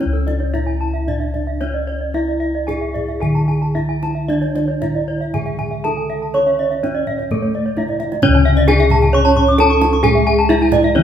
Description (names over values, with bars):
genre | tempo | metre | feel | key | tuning
Balinese gamelan | 112-132 BPM | 4/4 | straight | C# pelog | A4 = 440 Hz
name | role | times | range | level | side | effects
gamelan-type bronze metallophone | melody | 0.0-11.0 s | A3 to C#5 | -20 LUFS | right 1 dB | none
gamelan-type bronze metallophone | arpeggios | 0.0-11.0 s | A4 to D6+35c | -22 LUFS | left 4 dB | none
gamelan-type bossed gongs | bass | 0.0-11.0 s | C#2 to C#5 | -19 LUFS | left 1 dB | none
kendang | percussion | 0.0-10.9 s | none | -26 LUFS | right 2 dB | none
gamelan-type bronze metallophone | arpeggios | 0.1-10.8 s | A4 to A5 | -25 LUFS | right 4 dB | none
gamelan-type bronze metallophone | accompaniment | 4.3-11.0 s | C#3 to C#4 | -23 LUFS | right 1 dB | none
room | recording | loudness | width
wet large studio reverb, RT60 1.4 s | band playing live in one room | -14 LUFS | side -9 dB against mid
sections
0.0-8.2 A section; 8.2-11.0 B section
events
drum fill 7.9-8.2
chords
none